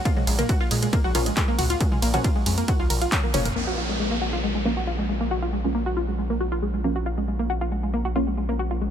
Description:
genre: driving peak-time techno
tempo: 137 BPM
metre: 4/4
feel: straight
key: Bb minor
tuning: A4 = 440 Hz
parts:
  - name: analog pluck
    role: riff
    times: 0.1-8.9 s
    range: Ab3 to Bb4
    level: -26 LUFS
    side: equal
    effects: chorus, phaser, overdrive, sidechain pumping, tape echo
  - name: electronic kick drum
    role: drums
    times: 0.1-3.2 s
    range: none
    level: -24 LUFS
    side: equal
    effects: none
  - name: punchy analog drum machine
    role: drums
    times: 0.1-3.5 s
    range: handclaps, hi-hat, ride cymbal, toms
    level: -29 LUFS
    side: right 1 dB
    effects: low-pass filter on hats, low-pass filter on snare, low-pass filter on cymbals, low-pass filter on toms
  - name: gritty driven synth bass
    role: bass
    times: 0.3-8.9 s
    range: F1 to Bb2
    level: -27 LUFS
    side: equal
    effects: sidechain pumping
  - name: filtered dub chord stab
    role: stabs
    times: 1.1-8.3 s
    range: F3 to Db4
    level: -32 LUFS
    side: right 2 dB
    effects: wide subtle chorus, sidechain pumping, digital delay
  - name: downlifter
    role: sound effects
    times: 3.6-7.1 s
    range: none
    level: -32 LUFS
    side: equal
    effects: none
room: light reverb, digital ambience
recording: none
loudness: -21 LUFS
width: side -9 dB against mid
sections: 0.0-3.6 A section; 3.6-8.9 B section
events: drop 0.0-3.6; drum fill 3.1-3.6; band accent 3.1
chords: 0.0 Bbm

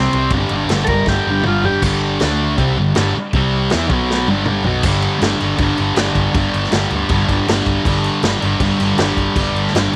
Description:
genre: garage rock duo or trio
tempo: 160 BPM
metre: 4/4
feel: straight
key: G major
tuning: A4 = 440 Hz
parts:
  - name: overdriven combo organ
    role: melody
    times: 0.0-1.8 s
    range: C4 to Bb4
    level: -22 LUFS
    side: equal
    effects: none
  - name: thick fuzz guitar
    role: riff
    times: 0.0-10.0 s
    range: G2 to E4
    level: -19 LUFS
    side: equal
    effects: distortion
  - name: vintage muted fingered electric bass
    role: bass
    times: 0.0-10.0 s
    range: G1 to E2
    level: -24 LUFS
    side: equal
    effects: tube saturation
  - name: vintage drum kit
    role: drums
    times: 0.1-10.0 s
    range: crash cymbal, kick drum, ride cymbal, snare drum, toms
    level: -23 LUFS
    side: equal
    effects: none
room: light reverb, studio reverb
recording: none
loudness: -16 LUFS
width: mono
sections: 0.0-1.8 A section; 1.8-4.8 B section; 4.8-10.0 C section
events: transistor combo organ solo 0.0-1.8; drum fill 1.1-1.8, 4.1-4.8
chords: 0.3 G5; 2.2 D5; 2.6 G5; 3.3 C5; 3.7 E5; 3.9 B5; 4.3 G; 4.8 G5

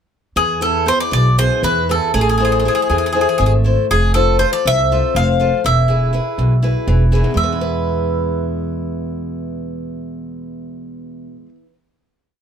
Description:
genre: greek folk, Greek bouzouki band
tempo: 242 BPM (eighths)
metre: 7/8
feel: straight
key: unclear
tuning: A4 = 441 Hz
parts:
  - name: Greek bouzouki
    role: melody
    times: 0.4-11.5 s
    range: G#4 to F5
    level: -18 LUFS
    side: equal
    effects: none
  - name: picked steel-string acoustic guitar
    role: accompaniment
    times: 0.4-11.7 s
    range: E2 to C5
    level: -20 LUFS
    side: left 2 dB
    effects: none
  - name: upright bass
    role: bass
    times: 0.4-11.5 s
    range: E1 to E2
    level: -18 LUFS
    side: equal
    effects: none
room: little or no reverb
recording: none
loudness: -14 LUFS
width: side -8 dB against mid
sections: 0.4-7.4 A section; 7.4-10.8 final chord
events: none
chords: 0.4 E; 2.1 Am; 3.9 F; 5.6 E

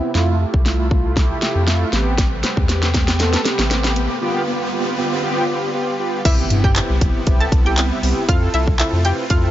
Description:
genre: dance-pop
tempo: 118 BPM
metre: 4/4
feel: straight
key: C major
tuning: A4 = 441 Hz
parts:
  - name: mellow synth brass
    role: accompaniment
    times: 0.0-9.5 s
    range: A3 to B4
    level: -22 LUFS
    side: right 1 dB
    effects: chorus, sidechain pumping, low-pass filter
  - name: supersaw chords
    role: sustained chords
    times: 0.0-9.5 s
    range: C3 to B4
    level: -27 LUFS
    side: equal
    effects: sidechain pumping, low-pass filter
  - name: riser and impact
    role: sound effects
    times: 1.3-8.3 s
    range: none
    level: -29 LUFS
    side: right 1 dB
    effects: none
  - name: round analog bass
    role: bass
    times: 0.1-9.5 s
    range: A1 to G2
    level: -19 LUFS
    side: equal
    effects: sidechain pumping
  - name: pop drum kit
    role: drums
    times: 0.1-9.4 s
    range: crash cymbal, handclaps, hi-hat, kick drum, snare drum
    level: -18 LUFS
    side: equal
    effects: none
  - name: analog pluck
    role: melody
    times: 6.3-9.4 s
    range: E4 to A5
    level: -24 LUFS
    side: equal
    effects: chorus
room: light reverb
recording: nothing above 7.5 kHz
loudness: -15 LUFS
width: side -13 dB against mid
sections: 0.0-6.3 A section; 6.3-9.5 B section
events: build-up 0.0-6.3; drum fill 0.0-4.2; filter sweep 0.0-6.3; riser 1.3-6.3; break 4.2-6.3; drop 6.3-9.5; impact 6.3-8.3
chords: 0.1 Fmaj7; 1.9 Am9; 4.2 G7; 6.3 Cmaj7; 8.3 Fmaj7

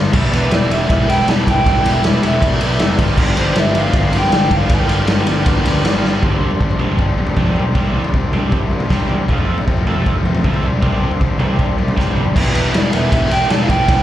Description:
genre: indie rock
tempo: 157 BPM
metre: 4/4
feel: straight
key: unclear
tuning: A4 = 439 Hz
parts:
  - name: combo organ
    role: sustained chords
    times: 0.0-12.3 s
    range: G4 to C6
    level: -30 LUFS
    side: equal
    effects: none
  - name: biting overdriven guitar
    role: riff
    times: 0.0-14.0 s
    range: F2 to F4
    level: -23 LUFS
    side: left 7 dB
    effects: slapback echo
  - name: fuzz picked electric bass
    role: bass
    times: 0.0-14.0 s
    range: E1 to F2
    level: -19 LUFS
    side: equal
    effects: overdrive
  - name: raw garage guitar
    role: riff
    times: 0.1-14.0 s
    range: E2 to A4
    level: -23 LUFS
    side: right 4 dB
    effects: overdrive, wide subtle chorus, slapback echo
  - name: raw garage drum kit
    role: drums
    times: 0.1-14.0 s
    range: crash cymbal, kick drum, ride cymbal, snare drum, splash cymbal, toms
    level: -16 LUFS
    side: equal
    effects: none
  - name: electric guitar through a small old amp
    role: melody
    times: 0.3-6.1, 12.5-14.0 s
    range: B4 to A5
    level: -20 LUFS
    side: right 1 dB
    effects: spring reverb, slapback echo
room: light reverb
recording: live gig heard through the venue's PA, club reverb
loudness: -13 LUFS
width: side -12 dB against mid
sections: 0.0-6.2 A section; 6.2-12.4 B section; 12.4-14.0 A section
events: drum fill 6.0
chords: 0.1 Em7; 3.0 G7sus4; 7.8 Csus2; 9.3 Fadd9; 10.6 Csus2; 12.4 Em

